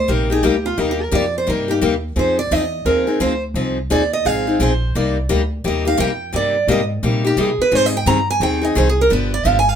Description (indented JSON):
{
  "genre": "acoustic string swing (jazz manouche)",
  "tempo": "173 BPM",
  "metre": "4/4",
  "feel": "swing 62% on 8ths",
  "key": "C minor",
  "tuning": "A4 = 440 Hz",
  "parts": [
    { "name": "picked steel-string acoustic guitar", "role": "melody", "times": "0.0-9.8 s", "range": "Eb4 to Bb5", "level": "-19 LUFS", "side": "right 3 dB", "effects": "none" },
    { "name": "upright bass", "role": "bass", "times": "0.0-9.8 s", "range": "G1 to C3", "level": "-21 LUFS", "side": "right 1 dB", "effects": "none" },
    { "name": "picked steel-string acoustic guitar", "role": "accompaniment", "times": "0.1-9.6 s", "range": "C3 to Ab4", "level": "-19 LUFS", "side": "left 4 dB", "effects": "none" }
  ],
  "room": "light reverb",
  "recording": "band playing live in one room",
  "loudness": "-15 LUFS",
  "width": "side -8 dB against mid",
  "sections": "0.0-9.8 A section",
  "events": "steel-string acoustic guitar solo 0.0-9.8",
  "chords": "0.0 Cm9; 2.2 Fm7; 4.9 Cm9; 7.7 Abmaj7; 9.1 G7"
}